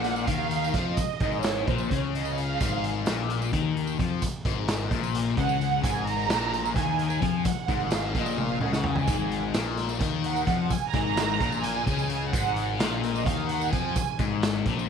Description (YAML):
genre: psychedelic rock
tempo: 259 BPM (eighths)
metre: 7/8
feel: straight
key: unclear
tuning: A4 = 439 Hz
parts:
  - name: warm symphonic string section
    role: sustained chords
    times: 0.0-14.4 s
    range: C5 to Bb5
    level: -30 LUFS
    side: right 14 dB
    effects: none
  - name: thick fuzz guitar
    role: riff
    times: 0.0-14.9 s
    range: Ab2 to F3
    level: -28 LUFS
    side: left 10 dB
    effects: distortion, phaser
  - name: fuzz picked electric bass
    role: bass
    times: 0.0-14.9 s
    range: Ab1 to F2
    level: -32 LUFS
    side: right 2 dB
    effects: overdrive
  - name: raw garage drum kit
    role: drums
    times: 0.0-14.8 s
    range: hi-hat, kick drum, snare drum, toms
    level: -29 LUFS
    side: right 2 dB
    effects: none
  - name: tambourine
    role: percussion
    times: 0.0-14.9 s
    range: none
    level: -44 LUFS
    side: right 18 dB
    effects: none
room: light reverb, studio ambience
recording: 1960s-style stereo with parts hard left and right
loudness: -24 LUFS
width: side -7 dB against mid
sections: 0.0-14.9 A section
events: string section solo 0.0-14.9; drum fill 8.4-9.1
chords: 0.0 Ab5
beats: 0.04 0.28 0.51 0.74 | 0.97 1.21 1.44 1.67 1.90 2.14 2.37 | 2.60 2.83 3.06 3.30 3.53 3.76 3.99 | 4.22 4.45 4.69 4.92 5.15 5.38 5.61 | 5.84 6.08 6.31 6.54 6.77 7.00 7.23 | 7.46 7.69 7.93 8.16 8.39 8.62 8.85 | 9.08 9.31 9.55 9.78 10.01 10.24 10.47 | 10.71 10.94 11.17 11.40 11.63 11.87 12.10 | 12.33 12.56 12.79 13.03 13.26 13.49 13.72 | 13.96 14.19 14.42 14.66 14.89